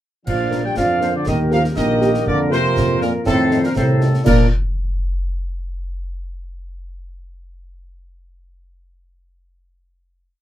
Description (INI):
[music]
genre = military-style march for wind band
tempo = 120 BPM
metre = 2/4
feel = straight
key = Bb major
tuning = A4 = 440 Hz
[part]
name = warm trumpet section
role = melody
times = 0.3-4.5 s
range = A4 to G5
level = -22 LUFS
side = equal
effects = none
[part]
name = mellow woodwind section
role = second line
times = 0.3-4.5 s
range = Eb4 to D5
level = -26 LUFS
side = equal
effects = none
[part]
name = warm euphonium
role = second line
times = 0.3-4.5 s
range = A2 to Bb3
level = -22 LUFS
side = right 3 dB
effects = none
[part]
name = warm trombone section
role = sustained chords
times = 0.3-4.5 s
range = Eb3 to D4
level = -25 LUFS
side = left 2 dB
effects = none
[part]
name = dark tuba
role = bass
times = 0.3-4.5 s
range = Bb1 to Bb2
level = -20 LUFS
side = right 1 dB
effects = none
[part]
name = clash cymbals, concert bass drum and concert snare drum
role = drums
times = 0.3-4.5 s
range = none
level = -24 LUFS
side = left 1 dB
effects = none
[part]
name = mellow French horn section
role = accompaniment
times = 0.5-4.5 s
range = Bb3 to Bb4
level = -23 LUFS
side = left 1 dB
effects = none
[sound]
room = wet booth ambience, RT60 0.3 s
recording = heard from further back in the room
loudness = -15 LUFS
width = side -12 dB against mid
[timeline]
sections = 0.3-4.3 A section; 4.3-5.3 final chord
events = none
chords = 0.3 Bb; 1.3 Eb; 2.3 Bb5/F; 3.3 F7; 4.3 Bb